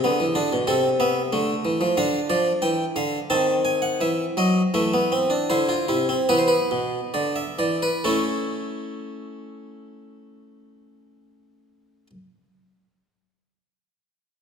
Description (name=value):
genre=classical, baroque-style 3-part fugue for harpsichord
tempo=64-94 BPM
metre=4/4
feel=straight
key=unclear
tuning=A4 = 440 Hz
part: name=harpsichord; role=solo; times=0.0-12.1 s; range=B2 to A5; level=-20 LUFS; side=equal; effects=none
room=wet scoring stage reverb, RT60 1.7 s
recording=minimal, uncompressed stereo recording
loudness=-20 LUFS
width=side -7 dB against mid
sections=0.0-8.1 A section; 8.1-11.8 B section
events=slowing down 0.7-8.1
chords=0.0 E7; 0.7 Am/C; 2.0 Dm; 3.3 D#dim7; 4.7 Am/E (rootless); 6.3 E5; 8.1 A